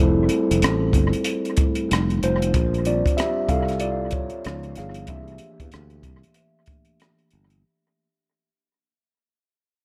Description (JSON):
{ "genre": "R&B, neo-soul", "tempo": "94 BPM", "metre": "4/4", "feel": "swing 61% on 16ths", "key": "unclear", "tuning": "A4 = 440 Hz", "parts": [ { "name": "mellow tine electric piano", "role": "accompaniment", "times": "0.0-7.7 s", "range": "E3 to F5", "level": "-26 LUFS", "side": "equal", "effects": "analog delay" }, { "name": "sustaining fretless electric bass", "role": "bass", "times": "0.0-7.6 s", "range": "F1 to E2", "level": "-26 LUFS", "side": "equal", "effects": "none" }, { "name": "compact cocktail drum kit", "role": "drums", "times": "0.3-7.6 s", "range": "hi-hat, kick drum, rim click", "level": "-25 LUFS", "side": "equal", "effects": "analog delay" } ], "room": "small room reverb", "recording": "echo-heavy mix", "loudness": "-22 LUFS", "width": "mono", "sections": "0.0-7.6 A section", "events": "fade-out 0.0-7.6; tine electric piano solo 0.0-7.6", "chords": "0.0 Fmaj9; 1.9 F9; 2.5 Bb69; 4.4 Db9; 5.1 C13" }